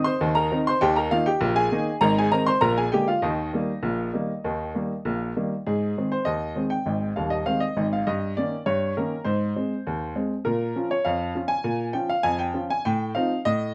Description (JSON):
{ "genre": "ragtime piano", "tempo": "100 BPM", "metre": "2/4", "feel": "straight", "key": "Eb major, Ab major from 5.7 s", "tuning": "A4 = 439 Hz", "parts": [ { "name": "clear upright piano", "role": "solo", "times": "0.0-13.7 s", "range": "Eb1 to C6", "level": "-25 LUFS", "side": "equal", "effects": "none" } ], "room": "moderate small room reverb, RT60 0.6 s", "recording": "none", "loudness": "-25 LUFS", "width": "mono", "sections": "0.0-5.7 A section; 5.7-13.7 B section", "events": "none", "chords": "0.0 Ab (rootless); 0.8 Eb; 2.0 Ab; 2.6 Bb7; 3.2 Eb; 5.7 Ab; 8.1 Eb7/G; 9.3 Ab; 10.5 Bbm; 12.9 F7/A" }